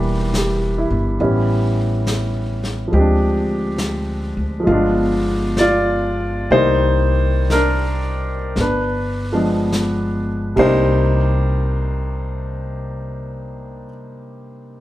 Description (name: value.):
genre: jazz ballad.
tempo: 44-70 BPM.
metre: 4/4.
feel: swing 67% on 8ths.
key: C minor.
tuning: A4 = 440 Hz.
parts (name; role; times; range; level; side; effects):
warm concert grand piano; accompaniment; 0.0-14.8 s; C3 to D5; -18 LUFS; equal; none.
upright bass; bass; 0.0-13.8 s; E1 to D2; -21 LUFS; equal; none.
vintage brush drum kit; drums; 0.3-10.8 s; brushed snare drum, hi-hat, kick drum, ride cymbal, snare drum; -29 LUFS; left 1 dB; none.
room: wet large studio reverb, RT60 0.9 s.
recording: heard from further back in the room.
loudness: -16 LUFS.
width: side -15 dB against mid.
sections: 0.0-2.9 A section; 2.9-11.0 B section; 11.0-14.8 C section.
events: slowing down 2.9-11.0.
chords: 0.0 Em7b5; 1.2 A7; 2.9 Dm7b5; 4.7 G7b9; 6.5 Cm9; 8.6 G7b9; 10.4 Cm9.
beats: 0.33 1.19 2.06 | 2.92 3.78 4.66 5.56 | 6.50 7.49 8.56 9.73 | 11.01 12.35 13.69.